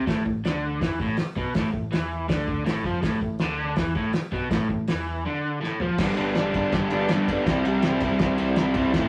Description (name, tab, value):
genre	garage rock duo or trio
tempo	162 BPM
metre	4/4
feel	straight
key	A minor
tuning	A4 = 440 Hz
part	crunchy overdriven guitar	riff	0.0-9.1 s	G2 to E4	-27 LUFS	equal	none
part	picked electric bass	bass	0.0-9.1 s	G1 to F2	-37 LUFS	equal	overdrive
part	cloth-damped thuddy drum kit	drums	0.1-9.0 s	crash cymbal, hi-hat, kick drum, ride cymbal, snare drum, toms	-29 LUFS	equal	none
room	wet small room reverb, RT60 0.5 s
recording	rough rehearsal-room recording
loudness	-25 LUFS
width	mono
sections	0.0-6.0 A section; 6.0-9.1 B section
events	drum fill 5.6-6.0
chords	0.0 A5; 6.0 G; 7.5 C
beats	| 0.07 0.44 0.81 1.18 | 1.55 1.93 2.30 2.67 | 3.04 3.41 3.78 4.15 | 4.52 4.89 5.26 5.63 | 6.00 6.37 6.74 7.11 | 7.48 7.85 8.21 8.58 | 8.95